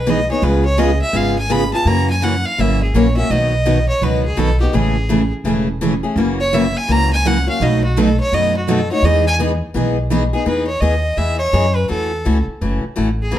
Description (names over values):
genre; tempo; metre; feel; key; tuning
acoustic string swing (jazz manouche); 168 BPM; 4/4; swing 62% on 8ths; E major; A4 = 437 Hz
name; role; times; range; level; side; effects
clear fiddle; melody; 0.0-13.4 s; F#4 to B5; -20 LUFS; right 1 dB; none
upright bass; bass; 0.0-13.4 s; E1 to F#2; -18 LUFS; equal; none
picked steel-string acoustic guitar; accompaniment; 0.1-13.4 s; B2 to G#4; -19 LUFS; left 4 dB; none
picked steel-string acoustic guitar; accompaniment; 0.1-10.2 s; B2 to B4; -22 LUFS; right 8 dB; none
room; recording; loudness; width
moderate studio reverb, RT60 0.8 s; dark, warm production; -14 LUFS; side -12 dB against mid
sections
0.0-10.5 A section; 10.5-13.4 B section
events
fiddle solo 0.0-10.5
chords
0.4 C#7; 1.9 F#7; 3.3 B; 4.7 Amaj7; 6.2 F#7; 7.6 B7; 9.0 Emaj7; 11.9 A6